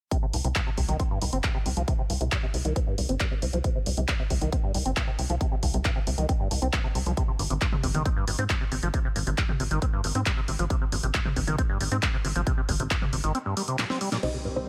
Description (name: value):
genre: uplifting trance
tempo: 136 BPM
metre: 4/4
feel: straight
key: C minor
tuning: A4 = 440 Hz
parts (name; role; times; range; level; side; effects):
- liquid acid bass; arpeggios; 0.1-14.6 s; G2 to C4; -34 LUFS; equal; chorus, cassette tape, sidechain pumping, delay
- big-room dance drum kit; drums; 0.1-14.3 s; crash cymbal, handclaps, hi-hat, snare drum, toms; -34 LUFS; equal; none
- electronic kick drum; drums; 0.1-13.0 s; none; -29 LUFS; equal; none
- tight sequencer bass; bass; 0.3-14.7 s; G1 to Ab2; -31 LUFS; equal; sidechain pumping
- unison pluck; melody; 14.2-14.7 s; C4 to Eb5; -34 LUFS; equal; sidechain pumping, dub echo
- supersaw pad; sustained chords; 14.2-14.7 s; Eb3 to C4; -40 LUFS; equal; phaser, sidechain pumping
room: digital ambience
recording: none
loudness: -27 LUFS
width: mono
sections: 0.1-14.2 A section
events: filter sweep on acid bass 0.1-14.2; kick drops out 13.3-14.2; drum fill 13.8-14.2; band accent 14.1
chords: 0.1 C5; 7.2 Ab